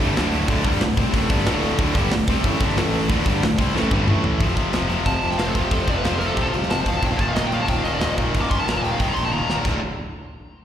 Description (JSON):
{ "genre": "heavy metal", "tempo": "183 BPM", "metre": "4/4", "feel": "straight", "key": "D phrygian", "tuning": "A4 = 441 Hz", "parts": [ { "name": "distorted electric guitar", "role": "riff", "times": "0.0-4.4 s", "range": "D2 to C4", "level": "-26 LUFS", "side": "equal", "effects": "distortion, slapback echo" }, { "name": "high-gain distorted guitar", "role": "riff", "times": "0.0-9.8 s", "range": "D2 to C4", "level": "-26 LUFS", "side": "right 10 dB", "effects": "distortion, slapback echo" }, { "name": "tight distorted guitar", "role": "riff", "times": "0.0-9.8 s", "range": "D2 to C4", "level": "-25 LUFS", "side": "left 11 dB", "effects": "distortion, slapback echo" }, { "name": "fuzz fingered electric bass", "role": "bass", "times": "0.0-9.8 s", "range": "D1 to C2", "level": "-25 LUFS", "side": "equal", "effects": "overdrive" }, { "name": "tight metal drum kit", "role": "drums", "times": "0.0-9.7 s", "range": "crash cymbal, hi-hat, kick drum, snare drum, toms", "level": "-24 LUFS", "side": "equal", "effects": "none" }, { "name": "high-gain lead guitar", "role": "melody", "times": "5.1-9.6 s", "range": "F4 to D6", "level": "-26 LUFS", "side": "equal", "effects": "distortion, slapback echo, digital delay" } ], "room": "little or no reverb", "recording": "live gig heard through the venue's PA, recital hall reverb", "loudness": "-18 LUFS", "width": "side -10 dB against mid", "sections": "0.0-4.4 A section; 4.4-9.7 B section", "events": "drum fill 3.8-4.4, 9.3-9.7; lead electric guitar solo 4.4-9.7", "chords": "0.0 D5; 2.8 A5; 3.1 D5; 4.1 A5; 4.4 F5; 7.0 Eb5; 9.7 D5" }